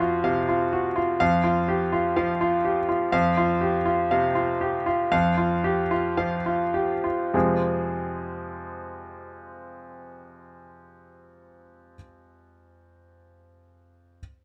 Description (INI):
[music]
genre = classical, virtuoso piano study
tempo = 99-127 BPM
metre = 4/4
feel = rubato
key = F minor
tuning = A4 = 435 Hz
[part]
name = bright grand piano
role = solo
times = 0.0-14.2 s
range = F2 to F5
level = -25 LUFS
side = equal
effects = none
[sound]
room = light reverb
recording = close, detailed microphones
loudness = -24 LUFS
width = mono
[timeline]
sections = 0.0-7.3 A section; 7.3-12.0 B section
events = slowing down 2.2-7.3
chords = 0.0 F5; 1.2 Fsus2; 3.1 F5; 5.1 Fsus2; 7.3 Fm